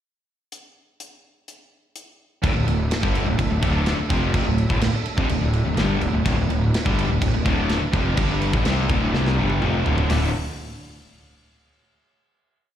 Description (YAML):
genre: hard rock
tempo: 125 BPM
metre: 4/4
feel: straight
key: unclear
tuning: A4 = 441 Hz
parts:
  - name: tight metal drum kit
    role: drums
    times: 0.5-10.2 s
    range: crash cymbal, hi-hat, kick drum, snare drum, toms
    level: -26 LUFS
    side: right 1 dB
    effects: none
  - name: percussive tonewheel organ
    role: sustained chords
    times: 2.4-10.3 s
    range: D4 to E5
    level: -35 LUFS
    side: right 2 dB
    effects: slow rotary speaker, chorus vibrato
  - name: distorted electric guitar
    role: riff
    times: 2.4-10.3 s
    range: D2 to C4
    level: -29 LUFS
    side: right 9 dB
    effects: distortion
  - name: overdriven semi-hollow guitar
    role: riff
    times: 2.4-10.3 s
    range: D2 to C4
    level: -25 LUFS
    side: left 6 dB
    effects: slapback echo
  - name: tight distorted guitar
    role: riff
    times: 2.4-10.3 s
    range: D2 to F#4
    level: -30 LUFS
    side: right 1 dB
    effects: distortion, slapback echo
  - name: fuzz fingered electric bass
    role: bass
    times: 2.4-10.3 s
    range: D1 to C2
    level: -23 LUFS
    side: equal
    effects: overdrive
room: studio reverb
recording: live gig heard through the venue's PA, recital hall reverb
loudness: -19 LUFS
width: side -10 dB against mid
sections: 0.5-2.4 pickup bar; 2.4-10.1 riff; 10.1-12.0 final chord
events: drum fill 9.1-10.1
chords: 0.5 N.C.; 2.4 D5